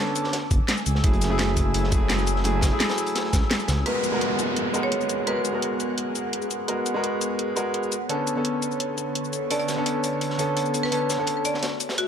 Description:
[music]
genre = liquid drum and bass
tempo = 170 BPM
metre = 4/4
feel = straight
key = G# phrygian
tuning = A4 = 438 Hz
[part]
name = clear concert grand piano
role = accompaniment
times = 0.0-11.7 s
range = D3 to A#4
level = -26 LUFS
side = equal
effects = ping-pong delay
[part]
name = airy breathy pad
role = sustained chords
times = 0.0-12.1 s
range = D3 to E6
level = -31 LUFS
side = equal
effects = chorus, phaser, sidechain pumping
[part]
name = crunchy breakbeat drum kit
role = drums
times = 0.2-3.8, 9.5-12.0 s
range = hi-hat, snare drum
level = -32 LUFS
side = equal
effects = high-pass filter on hats, high-pass filter on snare, high-pass filter on room
[part]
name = garage drum kit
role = drums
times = 0.2-12.1 s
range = cabasa, hi-hat, snare drum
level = -28 LUFS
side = left 1 dB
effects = none
[part]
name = swelling detuned saw bass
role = bass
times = 0.5-3.8 s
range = F#1 to C#2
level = -24 LUFS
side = equal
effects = none
[part]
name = electronic kick drum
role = drums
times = 0.5-3.4 s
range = none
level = -22 LUFS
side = equal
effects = none
[part]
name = marimba with hard mallets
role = melody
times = 3.9-5.5, 9.5-12.1 s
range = F#4 to D5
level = -29 LUFS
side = left 1 dB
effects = ping-pong delay
[part]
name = downlifter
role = sound effects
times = 3.9-6.7 s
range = none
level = -30 LUFS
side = equal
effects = none
[sound]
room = moderate digital room reverb, RT60 1.3 s, small room ambience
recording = none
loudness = -22 LUFS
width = side -8 dB against mid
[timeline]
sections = 0.0-3.9 A section; 3.9-12.1 B section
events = none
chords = 0.3 F#m9; 3.9 G#m9; 7.9 Bm9

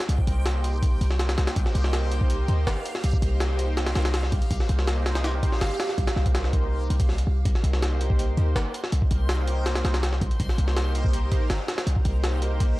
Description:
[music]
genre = drum and bass, jungle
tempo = 163 BPM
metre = 4/4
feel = straight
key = C minor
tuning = A4 = 440 Hz
[part]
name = jungle sampler-style drum kit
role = drums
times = 0.0-12.7 s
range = hi-hat, kick drum, snare drum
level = -25 LUFS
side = equal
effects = none
[part]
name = backwards swelling texture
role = texture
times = 0.0-12.8 s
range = G4 to C6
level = -37 LUFS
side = right 2 dB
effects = built-in reverb
[part]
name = lush unison pad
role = sustained chords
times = 0.1-12.8 s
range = Bb3 to C5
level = -33 LUFS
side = equal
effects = chorus, phaser
[part]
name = warm 808-style bass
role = bass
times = 0.1-12.8 s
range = G1 to C2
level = -24 LUFS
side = equal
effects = none
[sound]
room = digital ambience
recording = dry, gritty hardware recording, vinyl crackle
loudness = -22 LUFS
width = side -19 dB against mid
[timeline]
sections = 0.0-12.8 A section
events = none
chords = 0.0 Cm7

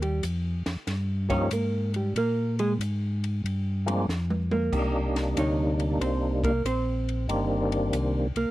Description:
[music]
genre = soul jazz organ trio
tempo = 94 BPM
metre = 4/4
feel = swing 66% on 8ths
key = unclear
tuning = A4 = 435 Hz
[part]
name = hollow-body jazz guitar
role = accompaniment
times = 0.0-8.5 s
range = G3 to Db5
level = -28 LUFS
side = right 2 dB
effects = none
[part]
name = mellow tonewheel organ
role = bass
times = 0.0-8.5 s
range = G1 to Bb2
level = -28 LUFS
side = equal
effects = overdrive, chorus vibrato, slow rotary speaker
[part]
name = compact cocktail drum kit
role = drums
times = 0.0-8.5 s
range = crash cymbal, hi-hat, kick drum, ride cymbal, snare drum, toms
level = -36 LUFS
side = equal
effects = none
[part]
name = percussive tonewheel organ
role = melody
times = 1.3-8.3 s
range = C3 to Eb4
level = -28 LUFS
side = equal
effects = slow rotary speaker, overdrive, chorus vibrato
[sound]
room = small room ambience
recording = dry, close 1970s-style studio recording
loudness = -24 LUFS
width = side -16 dB against mid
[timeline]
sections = 0.0-8.5 A section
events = hollow-body jazz guitar solo 0.0-8.5; drum fill 4.1-4.7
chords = 0.0 Eb9; 2.2 Bb7(no3); 4.7 Cm7

